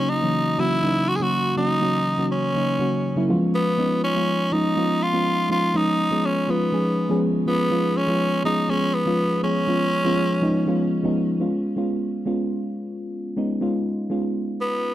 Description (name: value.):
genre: pop.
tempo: 122 BPM.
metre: 4/4.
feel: straight.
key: unclear.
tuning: A4 = 440 Hz.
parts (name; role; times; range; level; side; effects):
raspy tenor saxophone; melody; 0.0-10.9, 14.6-14.9 s; B3 to G#4; -23 LUFS; equal; none.
mellow FM electric piano; accompaniment; 0.0-14.9 s; C#3 to G#4; -22 LUFS; equal; chorus.
room: light reverb.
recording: dry, close 1970s-style studio recording.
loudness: -20 LUFS.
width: side -13 dB against mid.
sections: 0.0-11.4 A section; 11.4-14.9 B section.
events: none.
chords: 0.0 F#; 3.3 C#7.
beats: 0.09 0.58 1.07 | 1.57 2.06 2.55 3.04 | 3.53 4.03 4.52 5.01 | 5.50 5.99 6.49 6.98 | 7.47 7.96 8.45 8.94 | 9.44 9.93 10.42 10.91 | 11.40 11.89 12.39 12.88 | 13.37 13.86 14.35 14.85.